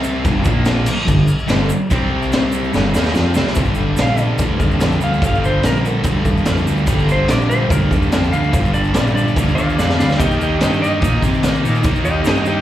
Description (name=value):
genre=garage rock duo or trio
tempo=145 BPM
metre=4/4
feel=straight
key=G minor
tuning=A4 = 441 Hz
part: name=thick fuzz guitar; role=riff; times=0.0-12.6 s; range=G2 to F4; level=-19 LUFS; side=equal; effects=distortion, slapback echo
part: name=fuzz picked electric bass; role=bass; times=0.0-12.6 s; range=G1 to C3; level=-20 LUFS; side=equal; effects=overdrive
part: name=egg shaker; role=percussion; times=0.0-12.6 s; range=none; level=-38 LUFS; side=right 1 dB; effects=none
part: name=raw garage drum kit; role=drums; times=0.2-12.4 s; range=crash cymbal, kick drum, snare drum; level=-18 LUFS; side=equal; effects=none
part: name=clean lap steel guitar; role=melody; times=4.0-12.6 s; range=G4 to F5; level=-22 LUFS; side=equal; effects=slapback echo
room=light reverb, studio reverb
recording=live gig heard through the venue's PA, club reverb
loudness=-14 LUFS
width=side -12 dB against mid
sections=0.0-3.6 A section; 3.6-12.6 B section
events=drum fill 2.7-3.6, 9.8-10.2; electric slide guitar solo 3.6-12.6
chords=0.3 G5; 0.5 Bb5; 0.9 G5; 1.9 C5; 2.7 Gm; 10.2 Eb